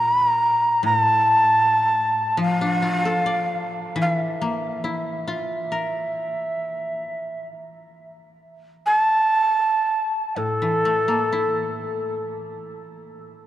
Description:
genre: japanese traditional, Japanese chamber music.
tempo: free time.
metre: none.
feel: none.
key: A miyako bushi.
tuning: A4 = 440 Hz.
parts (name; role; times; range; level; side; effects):
breathy reedy shakuhachi; melody; 0.0-12.2 s; A4 to Bb5; -20 LUFS; right 1 dB; none.
koto; accompaniment; 0.0-13.2 s; A2 to D5; -28 LUFS; left 2 dB; none.
room: wet cathedral reverb, RT60 6.4 s.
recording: dark, warm production.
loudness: -19 LUFS.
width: side -13 dB against mid.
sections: 0.0-12.4 A section; 12.4-13.5 A section.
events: none.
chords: none.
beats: free time.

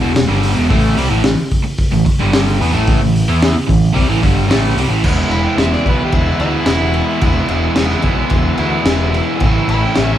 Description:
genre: garage rock duo or trio.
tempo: 110 BPM.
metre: 4/4.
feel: straight.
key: E mixolydian.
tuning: A4 = 438 Hz.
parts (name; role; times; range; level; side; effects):
crunchy overdriven guitar; riff; 0.0-10.2 s; E2 to E4; -16 LUFS; right 1 dB; none.
growling picked electric bass; bass; 0.0-10.1 s; E1 to E2; -18 LUFS; equal; overdrive.
crunchy breakbeat drum kit; drums; 0.2-10.1 s; crash cymbal, hi-hat, kick drum, snare drum; -16 LUFS; equal; none.
overdriven harmonica; melody; 5.3-10.2 s; E4 to B5; -22 LUFS; left 1 dB; none.
room: light reverb.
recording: band playing live in one room.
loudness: -12 LUFS.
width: side -11 dB against mid.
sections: 0.0-5.0 A section; 5.0-10.2 B section.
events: harmonica solo 5.0-10.2.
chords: 0.0 E5; 0.7 A5; 5.0 E; 9.4 A.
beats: 0.15 | 0.69 1.24 1.78 2.32 | 2.87 3.41 3.96 4.50 | 5.04 5.59 6.14 6.68 | 7.23 7.78 8.32 8.87 | 9.42 9.97.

